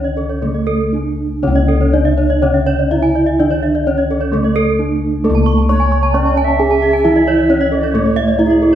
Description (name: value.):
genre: Balinese gamelan.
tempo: 119-133 BPM.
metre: 4/4.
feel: straight.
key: C# pelog.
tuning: A4 = 440 Hz.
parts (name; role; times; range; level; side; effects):
gamelan-type bronze metallophone; melody; 0.0-8.8 s; A3 to C#5; -16 LUFS; right 2 dB; none.
gamelan-type bronze metallophone; accompaniment; 0.0-8.8 s; C#3 to C#4; -23 LUFS; equal; none.
gamelan-type bronze metallophone; arpeggios; 0.0-8.7 s; A4 to C#6; -20 LUFS; left 4 dB; none.
gamelan-type bronze metallophone; arpeggios; 0.0-8.8 s; A4 to C#6; -22 LUFS; right 4 dB; none.
gamelan-type bossed gongs; bass; 0.0-8.8 s; C#2 to A4; -17 LUFS; left 2 dB; none.
mellow tenor recorder; second line; 5.7-8.8 s; G#4-21c to E5; -21 LUFS; right 4 dB; none.
room: wet recital hall reverb, RT60 1.6 s.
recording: recorded in a church or concert hall.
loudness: -12 LUFS.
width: side -10 dB against mid.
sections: 0.0-5.2 A section; 5.2-8.8 B section.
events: none.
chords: none.